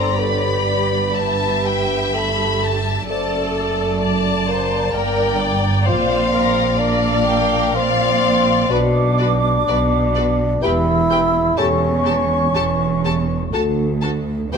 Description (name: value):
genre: classical, slow romantic movement for symphony orchestra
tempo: 60-66 BPM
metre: 3/4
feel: rubato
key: unclear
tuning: A4 = 440 Hz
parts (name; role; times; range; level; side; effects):
- warm studio violin section; melody; 0.0-14.6 s; D5 to B5; -25 LUFS; left 4 dB; none
- small flute group; second line; 0.0-14.6 s; E5 to E6; -25 LUFS; left 2 dB; none
- warm studio violin section; second line; 0.0-14.6 s; A4 to F5; -27 LUFS; left 3 dB; none
- mellow bassoon; accompaniment; 0.0-14.6 s; E3 to E4; -21 LUFS; right 1 dB; none
- rich studio viola section; accompaniment; 0.0-14.6 s; F#4 to D5; -26 LUFS; left 3 dB; none
- warm studio cello section; bass; 0.0-14.6 s; D2 to B2; -23 LUFS; right 2 dB; none
- warm studio double bass section; bass; 0.0-14.6 s; E1 to D2; -23 LUFS; right 3 dB; none
- mellow French horn section; sustained chords; 0.2-14.6 s; F4 to D5; -25 LUFS; left 6 dB; none
room: light reverb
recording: close, detailed microphones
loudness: -15 LUFS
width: side -6 dB against mid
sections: 0.0-14.6 A section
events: none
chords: 0.2 A7/G; 3.1 D7/F#; 4.9 Gm; 5.9 Bb; 8.7 Bm; 10.6 Em; 11.6 A7/E; 13.5 D